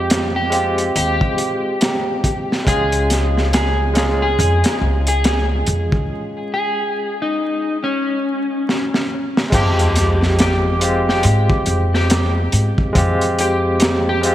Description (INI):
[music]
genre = trip hop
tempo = 70 BPM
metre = 4/4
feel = swing 60% on 16ths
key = F minor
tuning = A4 = 438 Hz
[part]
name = electric slide guitar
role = melody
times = 0.0-14.3 s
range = Db4 to Ab4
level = -21 LUFS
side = left 1 dB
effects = tape echo
[part]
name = barky tine electric piano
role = accompaniment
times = 0.0-14.3 s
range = Ab3 to Ab4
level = -22 LUFS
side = equal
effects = tremolo
[part]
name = upright bass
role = bass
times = 0.0-14.3 s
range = Db2 to Ab2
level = -19 LUFS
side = equal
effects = none
[part]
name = crunchy breakbeat drum kit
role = drums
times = 0.1-14.3 s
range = crash cymbal, hi-hat, kick drum, snare drum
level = -19 LUFS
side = equal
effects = gated reverb
[part]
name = sub drop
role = sound effects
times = 9.5-13.0 s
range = none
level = -24 LUFS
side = equal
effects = none
[sound]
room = moderate lush hall reverb, RT60 3.0 s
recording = bright 1980s-style digital production, vinyl crackle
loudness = -15 LUFS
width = side -12 dB against mid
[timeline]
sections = 0.0-9.5 A section; 9.5-14.3 B section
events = break 6.1-9.5; drum fill 8.7-9.5; impact 9.5-13.0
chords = 0.0 Fmadd9; 2.7 Db; 9.5 Fmadd9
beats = 0.10 0.95 1.81 | 2.67 3.52 4.38 5.24 | 6.10 6.95 7.81 8.67 | 9.53 10.38 11.24 12.10 | 12.95 13.81